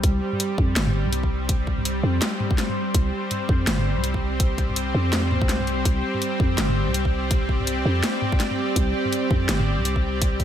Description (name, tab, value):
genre	half-time drum and bass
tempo	165 BPM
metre	4/4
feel	swing 59% on 16ths, half-time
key	unclear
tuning	A4 = 440 Hz
part	bowed-like drone	sustained chords	0.0-10.4 s	G3 to D5	-26 LUFS	equal	built-in reverb, sidechain pumping
part	growling 808-style bass	bass	0.0-10.4 s	G1 to F2	-24 LUFS	equal	none
part	drum and bass drum kit	drums	0.0-10.4 s	hi-hat, snare drum, toms	-26 LUFS	equal	overdrive, low-pass filter on hats, low-pass filter on toms, low-pass filter on snare
part	electronic kick drum	drums	0.0-10.4 s	none	-22 LUFS	equal	none
room	moderate lush hall reverb, RT60 1.7 s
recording	dreamy mix soaked in reverb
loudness	-20 LUFS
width	side -10 dB against mid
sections	0.0-10.4 A section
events	drop 0.0-10.4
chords	0.0 C5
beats	| 0.04 0.40 0.76 1.13 | 1.49 1.85 2.22 2.58 | 2.94 3.31 3.67 4.04 | 4.40 4.76 5.13 5.49 | 5.85 6.22 6.58 6.95 | 7.31 7.67 8.04 8.40 | 8.76 9.13 9.49 9.85 | 10.22